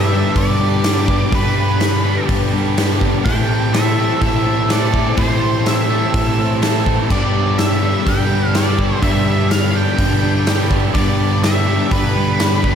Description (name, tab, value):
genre	rock, shoegaze and dream pop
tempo	125 BPM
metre	4/4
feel	straight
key	unclear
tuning	A4 = 440 Hz
part	octave-fuzz lead guitar	melody	0.0-12.8 s	B4 to G5	-22 LUFS	equal	distortion, analog delay
part	analog string pad	sustained chords	0.0-12.8 s	G4 to E6	-27 LUFS	right 2 dB	ensemble chorus, phaser
part	biting overdriven guitar	riff	0.0-12.8 s	G2 to A4	-24 LUFS	right 9 dB	reverse reverb
part	cranked stack guitar	riff	0.0-12.8 s	G2 to A3	-24 LUFS	right 1 dB	overdrive
part	overdriven electric guitar	riff	0.0-12.8 s	G2 to E4	-23 LUFS	left 10 dB	analog chorus
part	tine electric piano	bass	0.0-12.8 s	G2 to A2	-18 LUFS	equal	medium stereo tremolo
part	huge arena drum kit	drums	0.4-12.8 s	crash cymbal, hi-hat, kick drum, snare drum	-20 LUFS	equal	none
room	moderate plate reverb, RT60 1.2 s, small room ambience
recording	dreamy mix soaked in reverb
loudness	-14 LUFS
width	side -8 dB against mid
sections	0.0-12.8 A section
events	none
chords	0.0 Gadd9; 3.3 Am7; 7.1 G6